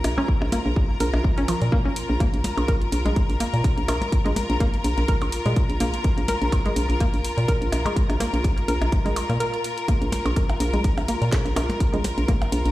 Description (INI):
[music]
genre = minimal techno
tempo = 125 BPM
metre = 4/4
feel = swing 55% on 16ths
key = unclear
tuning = A4 = 440 Hz
[part]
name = hollow knocking FM bass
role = bass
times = 0.0-12.7 s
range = Bb1 to Bb2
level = -23 LUFS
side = equal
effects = sidechain pumping
[part]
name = house drum kit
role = drums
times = 0.0-12.7 s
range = hi-hat, snare drum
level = -34 LUFS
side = equal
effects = none
[part]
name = percussion blips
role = percussion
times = 0.0-12.5 s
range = none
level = -32 LUFS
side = equal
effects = overdrive, tape echo
[part]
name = clear symphonic string section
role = texture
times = 0.0-12.7 s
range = F4 to Bb5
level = -29 LUFS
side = left 2 dB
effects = sidechain pumping
[part]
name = hollow square pluck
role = riff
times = 0.2-12.3 s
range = F3 to Bb4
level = -29 LUFS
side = equal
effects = chorus, sidechain pumping, tape echo
[part]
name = electronic kick drum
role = drums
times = 0.3-12.4 s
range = none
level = -22 LUFS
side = equal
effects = none
[sound]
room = light reverb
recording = played on a big sound system in a bare room, large studio reverb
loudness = -20 LUFS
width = side -16 dB against mid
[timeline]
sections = 0.0-12.7 A section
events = break 9.4-9.9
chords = 0.0 Bb5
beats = | 0.28 0.76 1.24 1.72 | 2.20 2.68 3.16 3.64 | 4.12 4.60 5.08 5.56 | 6.04 6.52 7.00 7.48 | 7.96 8.44 8.92 9.40 | 9.88 10.36 10.84 11.32 | 11.80 12.28